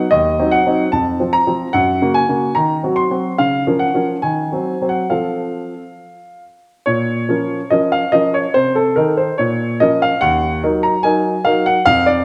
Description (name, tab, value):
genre	classical-period piano sonatina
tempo	72 BPM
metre	2/4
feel	straight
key	Bb minor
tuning	A4 = 441 Hz
part	warm grand piano	solo	0.0-12.2 s	Eb2 to C6	-16 LUFS	equal	none
room	wet recital hall reverb, RT60 1.5 s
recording	none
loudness	-16 LUFS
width	mono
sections	0.0-6.9 A section; 6.9-12.2 B section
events	none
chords	0.1 Cdim/Eb; 0.9 F; 1.7 Gb; 2.6 Cdim/Eb; 3.4 Bbm/Db; 4.2 Cdim/Eb; 5.1 F; 6.9 Bbm; 8.5 Adim/C; 9.4 Bbm; 10.2 Ebm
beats	| 0.11 0.92 | 1.74 2.56 | 3.39 4.24 | 5.11 5.99 | 6.86 7.71 | 8.55 9.38 | 10.22 11.04 | 11.87